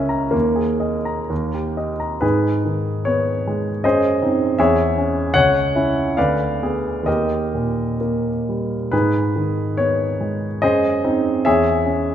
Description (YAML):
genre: classical, romantic character piece for solo piano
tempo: 61-81 BPM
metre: 2/4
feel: rubato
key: G# minor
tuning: A4 = 440 Hz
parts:
  - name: warm baby grand piano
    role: solo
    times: 0.0-12.1 s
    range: C#2 to A#5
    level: -17 LUFS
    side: equal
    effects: none
room: moderate scoring stage reverb, RT60 2.1 s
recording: dark, warm production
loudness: -17 LUFS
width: side -10 dB against mid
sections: 0.0-2.2 A section; 2.2-12.1 B section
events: none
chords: 0.3 D#sus4; 1.3 D#; 2.2 G#m; 3.8 G#7/F#; 4.6 C#m/E; 5.3 C#m; 6.2 Ddim7; 7.1 D#; 8.9 G#m; 10.6 G#7/F#; 11.5 C#m/E